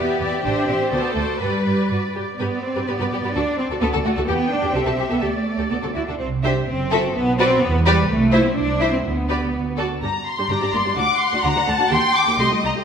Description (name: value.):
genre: quick classical-period movement for string orchestra.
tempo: 126 BPM.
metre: 2/4.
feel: rubato.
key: G major.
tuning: A4 = 440 Hz.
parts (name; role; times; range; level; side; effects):
dark symphonic violin section; melody; 0.0-12.7 s; D5 to D6; -24 LUFS; left 2 dB; none.
rich symphonic violin section; second line; 0.0-12.8 s; F#4 to G5; -25 LUFS; left 2 dB; none.
warm symphonic viola section; accompaniment; 0.0-12.8 s; G3 to D5; -26 LUFS; equal; none.
warm symphonic cello section; bass; 0.0-12.8 s; C2 to E4; -23 LUFS; right 2 dB; none.
warm symphonic double bass section; bass; 0.0-12.7 s; F#1 to G2; -25 LUFS; right 2 dB; none.
room: moderate scoring stage reverb, RT60 1.6 s.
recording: minimal, uncompressed stereo recording.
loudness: -18 LUFS.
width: side -7 dB against mid.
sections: 0.0-2.4 A section; 2.4-10.0 B section; 10.0-12.8 B section.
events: none.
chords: 0.4 Am7; 0.9 D7; 1.4 G; 3.3 D; 4.3 Em (rootless); 4.7 Am7/C; 5.2 D5; 5.7 D; 6.2 C; 6.7 F#m7b5; 7.2 Bm; 7.6 Em7; 8.1 Am/C; 9.0 G/D; 9.5 D; 10.0 Gm; 11.0 D; 11.9 Eb.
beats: | 0.44 0.92 | 1.41 1.90 | 2.40 2.87 | 3.35 3.81 | 4.28 4.75 | 5.22 5.71 | 6.20 6.68 | 7.16 7.63 | 8.09 8.56 | 9.04 9.54 | 10.03 10.50 | 10.97 11.44 | 11.91 12.39.